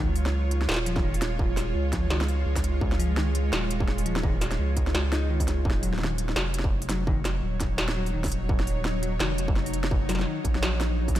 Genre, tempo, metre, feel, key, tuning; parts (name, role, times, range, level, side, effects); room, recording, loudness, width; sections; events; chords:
half-time drum and bass; 169 BPM; 4/4; swing 58% on 16ths, half-time; Eb minor; A4 = 440 Hz
bowed-like drone; sustained chords; 0.0-11.2 s; Gb3 to Db5; -33 LUFS; equal; built-in reverb, sidechain pumping
mellow electric guitar; arpeggios; 0.0-11.2 s; Eb3 to Eb4; -36 LUFS; left 4 dB; vintage 12-bit sampler grit, diffuse ambient delay
saturated sub bass; bass; 0.0-11.2 s; Eb1 to Db2; -27 LUFS; equal
industrial drum kit; drums; 0.2-11.2 s; hi-hat, snare drum; -31 LUFS; equal
electronic kick drum; drums; 1.0-11.1 s; -28 LUFS; equal; distortion
light reverb; -24 LUFS; side -13 dB against mid
0.0-11.2 A section
0.0 Db; 5.7 Ebm7